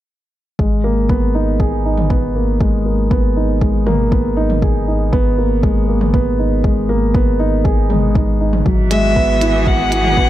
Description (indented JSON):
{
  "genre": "piano and strings electronica",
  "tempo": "119 BPM",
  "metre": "4/4",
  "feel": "straight",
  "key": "G# minor",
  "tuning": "A4 = 440 Hz",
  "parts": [
    { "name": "dark concert grand piano", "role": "riff", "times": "0.6-10.3 s", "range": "F#3 to G#4", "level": "-17 LUFS", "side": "equal", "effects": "low-pass filter, digital delay" },
    { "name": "warm sub bass", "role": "bass", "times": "0.6-10.3 s", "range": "G#1", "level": "-18 LUFS", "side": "equal", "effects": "sidechain pumping" },
    { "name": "electronic kick drum", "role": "drums", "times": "0.6-10.3 s", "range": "none", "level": "-17 LUFS", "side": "equal", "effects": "overdrive" },
    { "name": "minimal click drum kit", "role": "drums", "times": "2.0-10.1 s", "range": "hi-hat, toms", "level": "-23 LUFS", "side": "right 1 dB", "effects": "none" },
    { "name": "rich string quartet", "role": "sustained chords", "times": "8.7-10.3 s", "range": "E3 to G#4", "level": "-22 LUFS", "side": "equal", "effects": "sidechain pumping" },
    { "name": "dark violin", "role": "melody", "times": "8.9-10.3 s", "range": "E5 to F#5", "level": "-16 LUFS", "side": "right 1 dB", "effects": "none" }
  ],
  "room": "light reverb, studio ambience",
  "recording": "none",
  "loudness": "-13 LUFS",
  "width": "side -13 dB against mid",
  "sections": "0.6-10.3 A section",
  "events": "filter sweep on grand piano 0.6-10.3",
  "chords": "0.6 G#madd9; 8.7 Eadd9/G#",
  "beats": "| 0.59 1.10 1.60 2.10 | 2.61 3.11 3.62 4.12 | 4.63 5.13 5.63 6.14 | 6.64 7.15 7.65 8.15 | 8.66 9.16 9.67 10.17"
}